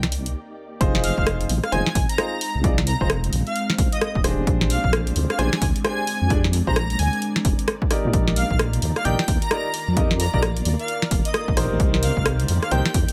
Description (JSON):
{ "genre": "UK garage, two-step garage", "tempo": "131 BPM", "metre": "4/4", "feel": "swing 61% on 16ths", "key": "F dorian", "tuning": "A4 = 440 Hz", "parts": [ { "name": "soft string machine", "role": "sustained chords", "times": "0.0-13.1 s", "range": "Ab3 to D5", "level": "-40 LUFS", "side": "equal", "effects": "none" }, { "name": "clear baby grand piano", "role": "stabs", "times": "0.0-12.8 s", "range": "D4 to Eb5", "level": "-30 LUFS", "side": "equal", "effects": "none" }, { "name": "deep soft wobble bass", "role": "bass", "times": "0.0-13.0 s", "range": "Eb1 to Bb2", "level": "-25 LUFS", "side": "equal", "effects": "chorus, sidechain pumping" }, { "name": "punchy analog drum machine", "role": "drums", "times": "0.0-13.1 s", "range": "hi-hat, rim click, snare drum", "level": "-28 LUFS", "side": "equal", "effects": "none" }, { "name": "deep dark ambient pad", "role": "texture", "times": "2.5-13.1 s", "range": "Eb3 to Bb5", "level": "-35 LUFS", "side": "equal", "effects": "chorus, built-in reverb, sidechain pumping" }, { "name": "electronic kick drum", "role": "drums", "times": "0.8-13.1 s", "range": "none", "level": "-25 LUFS", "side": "equal", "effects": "none" }, { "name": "airy dreamy lead", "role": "melody", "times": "1.0-12.9 s", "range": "Eb5 to Bb5", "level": "-31 LUFS", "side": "equal", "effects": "chorus" } ], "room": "little or no reverb", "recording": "none", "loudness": "-21 LUFS", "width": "mono", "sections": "0.8-13.1 A section", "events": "break 0.3-0.8; drop 0.8-13.1", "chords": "0.0 Cm7; 0.8 Fm7; 4.5 Bb13; 8.1 Ebmaj7/Bb; 11.8 Cm7" }